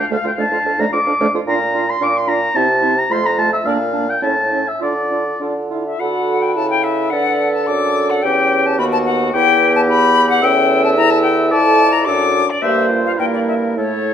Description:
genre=quick classical-period movement for wind quintet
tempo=108 BPM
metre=2/4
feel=rubato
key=D minor, D major from 6.0 s, D minor from 10.4 s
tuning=A4 = 437 Hz
part: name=concert flute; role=melody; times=0.0-14.1 s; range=A4 to D6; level=-17 LUFS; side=left 6 dB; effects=none
part: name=warm oboe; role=second line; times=0.0-14.1 s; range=F#4 to D6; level=-19 LUFS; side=left 1 dB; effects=none
part: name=mellow clarinet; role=accompaniment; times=0.0-14.1 s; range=A3 to B4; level=-23 LUFS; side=right 8 dB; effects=none
part: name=warm French horn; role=accompaniment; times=0.0-14.1 s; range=A3 to F#4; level=-22 LUFS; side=equal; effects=none
part: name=mellow bassoon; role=bass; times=0.0-14.1 s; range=D2 to D3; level=-21 LUFS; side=right 2 dB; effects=none
room=moderate recital hall reverb, RT60 1.8 s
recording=none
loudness=-13 LUFS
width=side -8 dB against mid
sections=0.0-6.0 A section; 6.0-14.1 B section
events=none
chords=0.4 Dm/F; 1.5 Bb; 2.5 C; 3.1 F; 3.7 Bb; 4.2 A; 4.8 Dm; 6.0 D; 6.6 A/C#; 7.1 D; 8.2 Em; 8.8 B/D#; 9.3 Em; 10.4 A/E; 11.5 Dm/F; 12.1 D/F#; 12.6 Gm; 13.2 Edim/G

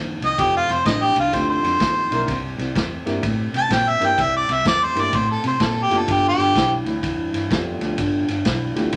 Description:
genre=electric blues shuffle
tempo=126 BPM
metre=4/4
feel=swing 64% on 8ths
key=unclear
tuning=A4 = 440 Hz
part: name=electric guitar through a small old amp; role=riff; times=0.0-9.0 s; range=F2 to Bb3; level=-29 LUFS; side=equal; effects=none
part: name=vintage muted fingered electric bass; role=bass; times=0.0-9.0 s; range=F1 to C3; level=-30 LUFS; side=equal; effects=none
part: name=vintage drum kit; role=drums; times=0.2-9.0 s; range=kick drum, ride cymbal, snare drum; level=-28 LUFS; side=equal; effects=none
part: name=warm harmonica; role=melody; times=0.3-6.7 s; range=F4 to A5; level=-21 LUFS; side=equal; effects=overdrive
part: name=dark baby grand piano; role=accompaniment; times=0.4-8.9 s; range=A3 to Bb4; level=-30 LUFS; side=equal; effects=none
room=moderate large studio reverb, RT60 0.8 s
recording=none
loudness=-20 LUFS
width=mono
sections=0.0-9.0 A section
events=harmonica solo 0.0-9.0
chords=0.0 F9; 2.3 C9; 6.1 G9

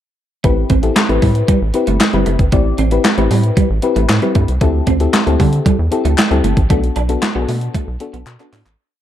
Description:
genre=early-eighties boogie funk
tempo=115 BPM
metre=4/4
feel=straight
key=A dorian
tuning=A4 = 436 Hz
part: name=mellow FM electric piano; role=accompaniment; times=0.4-8.7 s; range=B3 to D5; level=-19 LUFS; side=left 5 dB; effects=chorus
part: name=semi-hollow electric guitar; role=riff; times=0.4-8.6 s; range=G3 to D4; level=-22 LUFS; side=right 6 dB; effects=ensemble chorus
part: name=rubbery square bass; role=bass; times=0.4-8.8 s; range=F#1 to D3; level=-16 LUFS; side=equal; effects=none
part: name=clean 12-bit digital drum machine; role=drums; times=0.4-8.8 s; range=handclaps, hi-hat, kick drum, snare drum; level=-16 LUFS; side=right 1 dB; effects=none
part: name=group handclap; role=percussion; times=1.0-8.4 s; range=none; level=-23 LUFS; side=left 6 dB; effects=none
room=little or no reverb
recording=dark, warm production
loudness=-12 LUFS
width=side -11 dB against mid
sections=0.4-8.8 verse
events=fade-out 6.7-8.8; drum fill 8.3-8.8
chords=0.4 Am9; 4.6 D9sus4; 6.7 Bm7

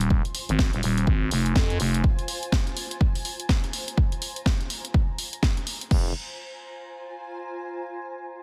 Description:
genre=bass house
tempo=124 BPM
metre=4/4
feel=swing 60% on 16ths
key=F minor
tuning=A4 = 441 Hz
part: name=growling FM bass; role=bass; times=0.0-2.0, 5.9-6.1 s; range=Eb1 to F2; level=-26 LUFS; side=equal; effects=sidechain pumping
part: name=house drum kit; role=drums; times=0.0-6.0 s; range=crash cymbal, hi-hat, snare drum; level=-33 LUFS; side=equal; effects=none
part: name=granular cloud pad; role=texture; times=0.0-7.8 s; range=F4 to C6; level=-41 LUFS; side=equal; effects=built-in reverb, sidechain pumping
part: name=electronic kick drum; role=drums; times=0.1-6.0 s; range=none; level=-25 LUFS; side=equal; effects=none
room=little or no reverb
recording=heavily compressed radio sound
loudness=-25 LUFS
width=mono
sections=0.0-5.9 A section; 5.9-7.8 B section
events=fade-out on ambient pad 0.0-5.9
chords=0.0 Fm

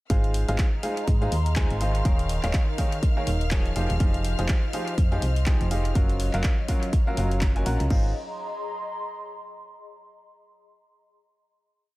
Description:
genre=piano house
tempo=123 BPM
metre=4/4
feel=swing 58% on 16ths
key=Ab mixolydian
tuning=A4 = 439 Hz
part: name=clear symphonic string section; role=sustained chords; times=0.1-7.9 s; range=F5 to F6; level=-40 LUFS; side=left 1 dB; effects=sidechain pumping
part: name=clear upright piano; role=riff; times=0.1-8.1 s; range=Eb3 to Ab5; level=-30 LUFS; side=equal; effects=sidechain pumping, analog delay
part: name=solid FM bass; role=bass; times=0.1-8.1 s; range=Eb1 to Ab2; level=-25 LUFS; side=equal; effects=sidechain pumping
part: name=breakbeat sampler-style drum kit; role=drums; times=0.1-7.8 s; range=hi-hat, snare drum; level=-45 LUFS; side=right 1 dB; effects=none
part: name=electronic kick drum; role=drums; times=0.1-8.0 s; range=none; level=-23 LUFS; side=equal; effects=studio reverb
part: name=house drum kit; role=drums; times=0.1-8.0 s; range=crash cymbal, handclaps, hi-hat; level=-36 LUFS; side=left 1 dB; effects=studio reverb, analog delay
part: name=airy breathy pad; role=texture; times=0.1-9.8 s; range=Gb3 to C6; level=-35 LUFS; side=equal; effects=chorus, sidechain pumping
room=light reverb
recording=echo-heavy mix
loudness=-22 LUFS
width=side -19 dB against mid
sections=0.1-7.9 drop; 7.9-9.9 final chord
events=drop 0.1-7.9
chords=0.1 Ab6; 2.1 Eb9sus4; 3.8 Fm9; 6.0 Gbmaj7; 7.9 Ab6

